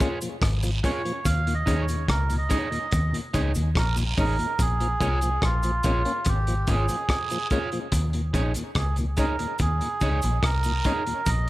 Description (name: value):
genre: roots reggae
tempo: 72 BPM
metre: 4/4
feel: straight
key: unclear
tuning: A4 = 440 Hz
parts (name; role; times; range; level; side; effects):
- electric guitar at the edge of break-up; accompaniment; 0.0-11.0 s; Eb4 to Db5; -33 LUFS; right 2 dB; dub echo, plate reverb
- tonewheel organ; accompaniment; 0.0-11.1 s; Eb2 to Eb4; -33 LUFS; left 2 dB; slow rotary speaker, dub echo, plate reverb
- crunchy breakbeat drum kit; drums; 0.0-11.5 s; hi-hat, kick drum, rim click; -28 LUFS; equal; none
- cabasa and guiro; percussion; 0.0-11.5 s; none; -37 LUFS; right 3 dB; none
- vintage muted fingered electric bass; bass; 0.4-11.5 s; Ab1 to Eb2; -25 LUFS; equal; none
- melodica; melody; 0.8-11.5 s; F4 to F5; -29 LUFS; right 2 dB; dub echo
room: light reverb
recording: none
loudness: -22 LUFS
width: side -17 dB against mid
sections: 0.0-4.6 A section; 4.6-11.5 B section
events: melodica solo 0.0-4.6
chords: 0.0 Bbm7; 1.3 Eb7sus4; 4.6 Bbm7; 7.9 Eb7sus4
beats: 0.42 | 1.26 2.09 2.92 3.76 | 4.59 5.43 6.26 7.09 | 7.93 8.76 9.60 10.43 | 11.27